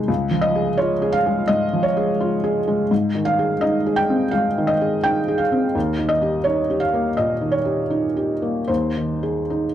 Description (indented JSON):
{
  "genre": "neoclassical minimalist piano",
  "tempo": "84 BPM",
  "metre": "4/4",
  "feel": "rubato",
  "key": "unclear",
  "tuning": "A4 = 440 Hz",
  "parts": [
    { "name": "felt-muted upright piano", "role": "solo", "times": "0.0-9.7 s", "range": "Db2 to G5", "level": "-18 LUFS", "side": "equal", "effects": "none" }
  ],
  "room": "small room ambience",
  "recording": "dry, close 1970s-style studio recording",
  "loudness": "-18 LUFS",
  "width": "side -11 dB against mid",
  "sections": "0.0-9.7 A section",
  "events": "none",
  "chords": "0.1 Db; 2.9 Ab; 5.8 Eb; 8.7 Ab/Eb"
}